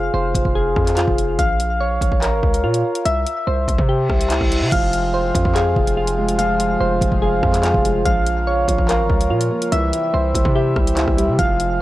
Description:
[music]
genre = hip hop, drill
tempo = 144 BPM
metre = 4/4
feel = half-time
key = F harmonic minor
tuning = A4 = 440 Hz
[part]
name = soft electric-piano-like synth keys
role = arpeggios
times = 0.0-11.8 s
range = E4 to F5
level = -19 LUFS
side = equal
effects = chorus, tape echo
[part]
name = hard-hitting 808-style bass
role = bass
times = 0.0-11.8 s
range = F1 to C3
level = -21 LUFS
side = equal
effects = none
[part]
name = drill drum kit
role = drums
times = 0.3-11.7 s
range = crash cymbal, handclaps, hi-hat, kick drum, rim click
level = -21 LUFS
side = equal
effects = none
[part]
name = reverse cymbal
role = sound effects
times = 4.1-4.7 s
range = none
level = -28 LUFS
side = right 1 dB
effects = none
[part]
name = dark concert grand piano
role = accompaniment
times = 4.7-11.8 s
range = E3 to F5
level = -23 LUFS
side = right 3 dB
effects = none
[part]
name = pedal harmonium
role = sustained chords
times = 4.7-11.8 s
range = C3 to F4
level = -30 LUFS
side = left 2 dB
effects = none
[sound]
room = little or no reverb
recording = dry, gritty hardware recording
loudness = -16 LUFS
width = side -16 dB against mid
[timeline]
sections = 0.0-4.7 A section; 4.7-11.8 B section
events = reverse cymbal 4.1-4.7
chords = 0.0 Fm; 1.4 Bbm; 3.1 C; 4.7 Fm; 8.1 Bbm; 9.7 C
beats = 0.14 0.56 0.97 | 1.39 1.80 2.22 2.64 | 3.06 3.47 3.89 4.30 | 4.72 5.14 5.55 5.97 | 6.39 6.80 7.22 7.64 | 8.05 8.47 8.89 9.30 | 9.72 10.14 10.55 10.97 | 11.39 11.80

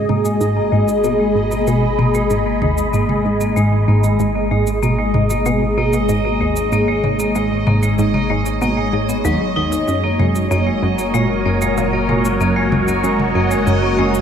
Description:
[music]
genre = ambient, sequencer-driven space music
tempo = 95 BPM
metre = 4/4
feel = straight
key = G# minor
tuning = A4 = 440 Hz
[part]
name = phased analog pad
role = sustained chords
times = 0.0-14.2 s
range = F#3 to B5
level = -20 LUFS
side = equal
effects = phaser, chorus
[part]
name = tight sequenced synth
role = riff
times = 0.0-14.2 s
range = C#2 to B2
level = -19 LUFS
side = equal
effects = chorus, analog delay
[part]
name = fat analog bass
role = bass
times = 0.0-14.2 s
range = F#1 to G#1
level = -26 LUFS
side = equal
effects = none
[part]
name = bubbling stepped-filter texture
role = texture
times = 0.0-14.2 s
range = D#5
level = -27 LUFS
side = right 6 dB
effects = chorus, built-in reverb
[part]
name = vibraphone with hard mallets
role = arpeggios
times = 0.1-14.1 s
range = F#3 to D#4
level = -21 LUFS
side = left 2 dB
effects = auto-pan, low-pass filter, analog delay
[part]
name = electronic toms and cabasa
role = percussion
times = 0.1-14.2 s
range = none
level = -27 LUFS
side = left 1 dB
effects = analog delay
[sound]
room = wet huge ambient reverb, RT60 7.6 s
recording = none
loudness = -14 LUFS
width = side -8 dB against mid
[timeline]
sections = 0.0-14.2 A section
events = filter sweep on vibraphone 0.0-14.2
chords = 0.0 G#m; 9.9 F#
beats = 0.41 1.04 1.67 | 2.30 2.93 3.56 4.20 | 4.83 5.46 6.09 6.72 | 7.35 7.99 8.62 9.25 | 9.88 10.51 11.14 11.78 | 12.41 13.04 13.67

